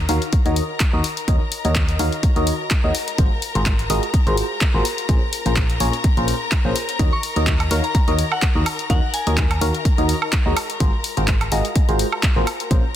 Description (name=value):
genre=piano house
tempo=126 BPM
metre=4/4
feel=swing 55% on 16ths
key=Eb dorian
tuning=A4 = 440 Hz
part: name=rich studio violin section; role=sustained chords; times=0.0-13.0 s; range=Bb4 to Bb5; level=-29 LUFS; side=left 4 dB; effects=sidechain pumping
part: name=solid FM bass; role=bass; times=0.0-12.8 s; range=Ab1 to Eb2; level=-22 LUFS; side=equal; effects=sidechain pumping
part: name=barking FM electric piano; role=riff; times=0.1-12.8 s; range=Bb2 to F5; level=-24 LUFS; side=left 1 dB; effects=phaser, sidechain pumping, low-pass filter, ping-pong delay
part: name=house drum kit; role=drums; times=0.1-12.8 s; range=handclaps, hi-hat, woodblock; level=-25 LUFS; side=equal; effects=none
part: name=electronic kick drum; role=drums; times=0.3-12.8 s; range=none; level=-18 LUFS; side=equal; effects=none
part: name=soft synth bell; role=melody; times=7.1-9.8 s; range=Gb5 to Db6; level=-28 LUFS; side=left 2 dB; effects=chorus, ping-pong delay
room=light reverb, digital ambience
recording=dense, heavily limited modern master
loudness=-17 LUFS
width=side -11 dB against mid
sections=0.0-13.0 A section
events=none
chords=0.0 Ebm7; 2.9 Ab13; 4.9 Bbm9; 7.0 Ebm7; 10.6 Ab13